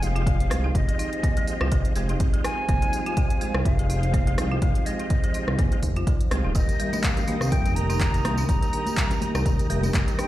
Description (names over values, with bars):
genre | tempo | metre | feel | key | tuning
afro house | 124 BPM | 4/4 | swing 56% on 16ths | F minor | A4 = 440 Hz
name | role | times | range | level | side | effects
hollow concert flute | melody | 0.0-10.3 s | Eb5 to Bb5 | -32 LUFS | equal | ping-pong delay
dark analog pad | sustained chords | 0.0-10.3 s | Eb3 to Eb6 | -36 LUFS | right 1 dB | chorus, phaser, sidechain pumping
tonewheel organ | stabs | 0.0-10.3 s | G3 to Bb4 | -33 LUFS | right 1 dB | chorus vibrato, fast rotary speaker, sidechain pumping, ping-pong delay
smooth gliding synth bass | bass | 0.0-10.0 s | Eb1 to C2 | -26 LUFS | equal | sidechain pumping
deep house drum kit | drums | 0.0-10.3 s | handclaps, hi-hat, rim click | -32 LUFS | equal | none
impact | sound effects | 0.0-0.7 s | none | barely audible | none | none
folk marimba with hard mallets | arpeggios | 0.2-10.3 s | Eb3 to F4 | -32 LUFS | equal | sidechain pumping, ping-pong delay
electronic kick drum | drums | 0.3-10.0 s | none | -23 LUFS | equal | none
tambourine | percussion | 6.5-10.2 s | none | -41 LUFS | right 2 dB | none
congas | percussion | 6.9-9.9 s | none | -33 LUFS | equal | none
room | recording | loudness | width
digital ambience | played on a big sound system in a bare room, large studio reverb | -21 LUFS | side -14 dB against mid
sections
0.0-10.3 A section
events
impact 0.0-0.7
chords
0.0 Fm9; 6.6 Eb/F